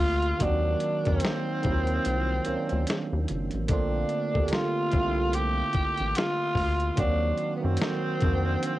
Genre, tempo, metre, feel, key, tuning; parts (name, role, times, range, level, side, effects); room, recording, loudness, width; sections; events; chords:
R&B, neo-soul; 73 BPM; 4/4; swing 59% on 16ths; A4 = 440 Hz
growling tenor saxophone; melody; 0.0-8.8 s; Cb4 to G4; -28 LUFS; left 1 dB; cassette tape
tine electric piano; accompaniment; 0.0-8.8 s; D3 to G4; -30 LUFS; right 4 dB; phaser, cassette tape
rubbery square bass; bass; 0.0-8.6 s; Gb1 to Gb2; -28 LUFS; left 1 dB; transformer saturation
dusty soul sampler-style drum kit; drums; 0.0-8.8 s; hi-hat, kick drum, snare drum; -29 LUFS; left 1 dB
light reverb; home recording on cassette; -24 LUFS; side -16 dB against mid
0.0-8.8 A section
break 2.0-3.7
0.4 Ebm6; 3.7 Bbmaj9; 7.0 Ebm6